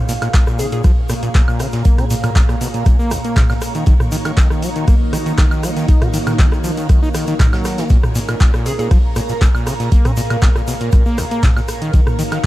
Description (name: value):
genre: acid house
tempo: 119 BPM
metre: 4/4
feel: straight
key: Bb minor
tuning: A4 = 441 Hz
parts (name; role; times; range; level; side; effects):
- string machine, full ensemble; sustained chords; 0.0-12.5 s; Bb2 to Db5; -25 LUFS; equal; ensemble chorus, sidechain pumping
- airy breathy pad; texture; 0.0-12.5 s; Eb4 to Bb5; -27 LUFS; right 2 dB; chorus, phaser, sidechain pumping
- overdriven acid bass; riff; 0.1-12.5 s; Bb1 to Gb4; -22 LUFS; equal; tube saturation, analog delay
- booming analog drum machine; drums; 0.1-12.5 s; handclaps, hi-hat, rim click, toms, woodblock; -23 LUFS; equal; none
- vintage drum kit; drums; 0.1-12.5 s; hi-hat, snare drum; -36 LUFS; right 2 dB; none
- egg shaker; percussion; 0.1-12.5 s; none; -35 LUFS; left 3 dB; none
- electronic kick drum; drums; 0.3-12.5 s; none; -13 LUFS; equal; none
- hollow square pluck; melody; 0.6-0.8, 8.7-8.9 s; Ab4; -27 LUFS; equal; chorus, tape echo
room: little or no reverb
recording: dark, warm production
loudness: -13 LUFS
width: side -16 dB against mid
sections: 0.0-12.5 A section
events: none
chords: 0.0 Bbm7; 3.9 Ebm7; 7.9 Bbm7; 11.9 Ebm7